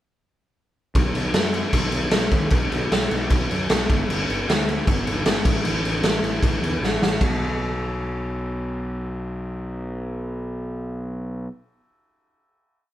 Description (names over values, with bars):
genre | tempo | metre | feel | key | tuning
punk rock | 153 BPM | 4/4 | straight | unclear | A4 = 440 Hz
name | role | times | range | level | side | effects
fuzz picked electric bass | bass | 0.9-11.5 s | G1 to F#2 | -26 LUFS | equal | overdrive
raw garage drum kit | drums | 0.9-7.3 s | crash cymbal, kick drum, ride cymbal, snare drum | -21 LUFS | equal | none
room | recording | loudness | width
light reverb | band playing live in one room | -21 LUFS | side -13 dB against mid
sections
1.0-7.2 riff; 7.2-10.4 final note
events
drum fill 6.8-7.2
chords
none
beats
| 0.95 1.35 1.74 2.13 | 2.52 2.92 3.31 3.70 | 4.09 4.48 4.88 5.27 | 5.66 6.05 6.44 6.83 | 7.22 7.62 8.01 8.40 | 8.79 9.18 9.58 9.97